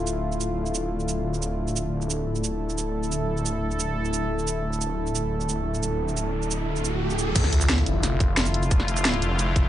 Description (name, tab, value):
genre	dark technical drum and bass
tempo	177 BPM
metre	4/4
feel	straight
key	D minor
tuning	A4 = 440 Hz
part	sweeping resonant pad	sustained chords	0.0-9.7 s	D3 to A4	-28 LUFS	equal	chorus, sidechain pumping
part	snarling distorted saw bass	bass	0.0-9.7 s	D1 to D2	-27 LUFS	equal	distortion, tube saturation, sidechain pumping
part	drum and bass drum kit	drums	0.1-9.6 s	crash cymbal, hi-hat, shaker, snare drum	-27 LUFS	right 2 dB	none
part	riser and impact	sound effects	5.7-8.7 s	none	-30 LUFS	right 1 dB	none
part	electronic kick drum	drums	7.4-9.6 s	none	-21 LUFS	equal	none
room	light reverb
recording	nothing above 10.3 kHz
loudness	-23 LUFS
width	side -12 dB against mid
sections	0.0-7.4 A section; 7.4-9.7 B section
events	riser 5.7-7.4; drop 7.4-9.7; impact 7.4-8.7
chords	0.0 Dm